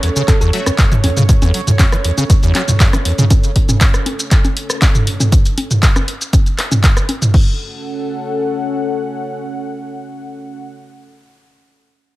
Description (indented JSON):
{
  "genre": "acid house",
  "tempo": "119 BPM",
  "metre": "4/4",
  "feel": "straight",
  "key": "F# minor",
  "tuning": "A4 = 440 Hz",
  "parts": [
    { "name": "dark analog pad", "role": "sustained chords", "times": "0.0-10.7 s", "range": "C#4 to F#5", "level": "-23 LUFS", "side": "equal", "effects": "chorus, sidechain pumping" },
    { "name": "acid bass, saw", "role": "riff", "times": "0.0-3.3 s", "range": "E2 to F#3", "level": "-17 LUFS", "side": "equal", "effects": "tube saturation, analog chorus" },
    { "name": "punchy analog drum machine", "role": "drums", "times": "0.0-7.4 s", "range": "congas, crash cymbal, handclaps, hi-hat, rim click, shaker, toms", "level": "-16 LUFS", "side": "equal", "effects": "none" },
    { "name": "thumb-piano-like synth pluck", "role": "melody", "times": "0.3-0.5 s", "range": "A4", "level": "-26 LUFS", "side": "right 1 dB", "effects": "chorus, tape echo" },
    { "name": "electronic kick drum", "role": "drums", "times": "0.3-7.4 s", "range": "none", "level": "-12 LUFS", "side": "equal", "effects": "none" },
    { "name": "band-passed chord stab", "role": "stabs", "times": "0.5-0.7 s", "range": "A3 to E5", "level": "-32 LUFS", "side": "left 5 dB", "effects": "none" }
  ],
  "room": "little or no reverb",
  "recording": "none",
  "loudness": "-12 LUFS",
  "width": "side -18 dB against mid",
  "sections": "0.0-7.3 A section; 7.3-11.4 B section",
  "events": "drop 0.0-7.3",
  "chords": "0.0 F#m (rootless); 7.3 F#m"
}